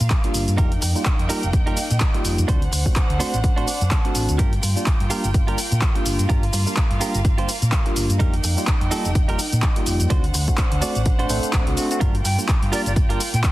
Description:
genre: filtered disco house.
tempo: 126 BPM.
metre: 4/4.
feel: swing 57% on 16ths.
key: G minor.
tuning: A4 = 435 Hz.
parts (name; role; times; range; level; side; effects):
warm chamber violin section; sustained chords; 0.0-13.5 s; Bb3 to G5; -30 LUFS; right 1 dB; sidechain pumping, low-pass filter.
direct-recorded clean electric guitar; riff; 0.0-13.5 s; D4 to A5; -30 LUFS; right 5 dB; sidechain pumping, low-pass filter.
fingered electric bass; bass; 0.0-13.4 s; F1 to Bb2; -22 LUFS; equal; sidechain pumping, low-pass filter.
punchy analog drum machine; drums; 0.0-13.5 s; handclaps, hi-hat, shaker; -27 LUFS; equal; overdrive, sidechain pumping on hats, studio reverb, sidechain pumping on cymbals, sidechain pumping on perc.
electronic kick drum; drums; 0.1-13.5 s; none; -20 LUFS; equal; studio reverb.
bright tine electric piano; accompaniment; 0.2-13.2 s; G3 to C5; -28 LUFS; equal; phaser, vintage 12-bit sampler grit, sidechain pumping, low-pass filter.
breathy bright jazz flute; melody; 12.2-13.5 s; D5 to G5; -29 LUFS; left 1 dB; sidechain pumping, low-pass filter.
room: light reverb.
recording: dense, heavily limited modern master.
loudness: -18 LUFS.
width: side -16 dB against mid.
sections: 0.0-13.5 A section.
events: clean electric guitar fill 3.4-4.4.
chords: 0.0 Gm7; 0.6 F9sus4; 2.5 D7; 4.4 Gm7; 8.2 F9sus4; 10.1 D7; 12.0 Gm7.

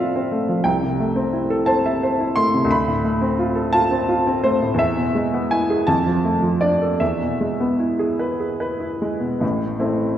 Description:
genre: classical, romantic character piece for solo piano.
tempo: 48-61 BPM (dotted quarters).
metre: 6/8.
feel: rubato.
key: A minor.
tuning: A4 = 441 Hz.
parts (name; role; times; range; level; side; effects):
warm upright piano; solo; 0.0-10.2 s; A1 to C6; -18 LUFS; equal; none.
room: wet scoring stage reverb, RT60 2.0 s.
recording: heard from further back in the room.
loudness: -18 LUFS.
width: side -10 dB against mid.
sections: 0.0-9.4 A section.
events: none.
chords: 0.0 F/A; 0.7 Am/C; 2.7 Dm7; 4.8 E; 5.9 Dm/F; 7.0 E; 9.4 Am.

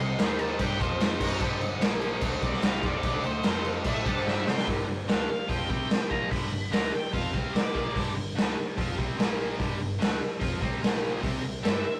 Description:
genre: blues rock power trio and southern rock.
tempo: 147 BPM.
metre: 4/4.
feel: straight.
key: unclear.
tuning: A4 = 441 Hz.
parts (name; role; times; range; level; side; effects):
octave-fuzz lead guitar; melody; 0.0-8.1, 11.6-12.0 s; C5 to C6; -37 LUFS; equal; distortion.
distorted electric guitar; riff; 0.0-11.9 s; G2 to C5; -36 LUFS; equal; overdrive.
vintage muted picked electric bass; bass; 0.0-11.9 s; G1 to C3; -39 LUFS; equal; none.
raw garage drum kit; drums; 0.2-11.7 s; crash cymbal, hi-hat, kick drum, snare drum; -30 LUFS; equal; none.
room: light reverb.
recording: rough rehearsal-room recording, warm saturation.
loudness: -28 LUFS.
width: mono.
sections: 0.0-4.7 A section; 4.7-12.0 B section.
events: drum fill 4.3-4.7.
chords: 0.2 Eb5; 0.6 G5; 0.8 F5; 1.2 F#5; 1.4 G5; 1.8 Bb5; 2.2 G5; 3.0 D5; 3.4 F5; 3.9 D5; 4.7 G7(no3); 9.2 Bb5; 9.6 G5; 10.8 Bb5; 11.2 C.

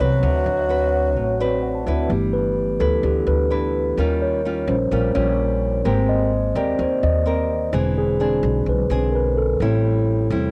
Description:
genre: bossa nova.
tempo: 128 BPM.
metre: 4/4.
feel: straight.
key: unclear.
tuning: A4 = 440 Hz.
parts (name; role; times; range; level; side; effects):
growling trombone; melody; 0.0-1.9 s; F#3; -23 LUFS; equal; cassette tape.
breathy jazz flute; second line; 0.0-1.9 s; F#4; -35 LUFS; equal; cassette tape.
mellow tine electric piano; accompaniment; 0.0-10.5 s; C3 to A5; -24 LUFS; equal; cassette tape.
nylon-string guitar; accompaniment; 0.0-10.5 s; A2 to B4; -28 LUFS; equal; cassette tape.
upright bass; bass; 0.0-10.5 s; E1 to E2; -25 LUFS; equal; none.
room: light reverb.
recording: home recording on cassette.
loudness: -20 LUFS.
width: mono.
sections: 0.0-2.1 A section; 2.1-10.5 B section.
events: tine electric piano fill 1.2-2.1; tine electric piano solo 2.1-10.5.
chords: 0.2 D13; 2.1 G6; 4.0 Eb9; 5.8 Abmaj9; 7.7 E7b13; 9.6 Am7.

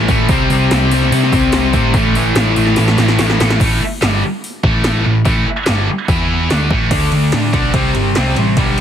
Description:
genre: hard rock.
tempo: 145 BPM.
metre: 4/4.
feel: straight.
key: unclear.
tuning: A4 = 440 Hz.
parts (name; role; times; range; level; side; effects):
overdriven electric guitar; riff; 0.0-3.6, 6.9-8.8 s; G2 to D4; -18 LUFS; left 1 dB; none.
scooped high-gain guitar; riff; 0.0-8.8 s; G2 to E4; -16 LUFS; left 1 dB; distortion.
hollow-body short-scale picked electric bass; bass; 0.0-8.8 s; G1 to C3; -16 LUFS; equal; none.
80s electronic pad drums; drums; 0.1-8.8 s; crash cymbal, hi-hat, kick drum, ride cymbal, snare drum; -18 LUFS; equal; overdrive.
room: light reverb.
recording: heavily compressed radio sound, multiband compression.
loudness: -11 LUFS.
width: side -9 dB against mid.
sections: 0.0-3.6 A section; 3.6-6.9 B section; 6.9-8.8 C section.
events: drum fill 2.8-3.6.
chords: 0.3 C5; 1.9 A5; 6.1 E5; 6.5 A5; 6.9 D5; 7.8 C5.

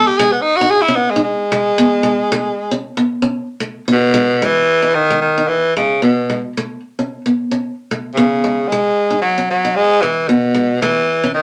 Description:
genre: highlife.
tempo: 113 BPM.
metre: 4/4.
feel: swing 55% on 16ths.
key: E major.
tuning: A4 = 436 Hz.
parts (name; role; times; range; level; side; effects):
raspy tenor saxophone; melody; 0.0-11.4 s; B2 to G#4; -16 LUFS; equal; none.
picked steel-string acoustic guitar; accompaniment; 0.0-11.4 s; G#3 to D#4; -20 LUFS; equal; none.
room: moderate club reverb, RT60 0.6 s.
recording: none.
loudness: -16 LUFS.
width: mono.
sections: 0.0-4.4 A section; 4.4-11.4 B section.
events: tenor saxophone solo 0.0-4.4.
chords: 0.2 G#madd11; 3.4 Bsus2; 4.4 Emaj7; 6.6 Aadd9; 7.6 Bsus2; 8.7 B69; 10.8 C#m.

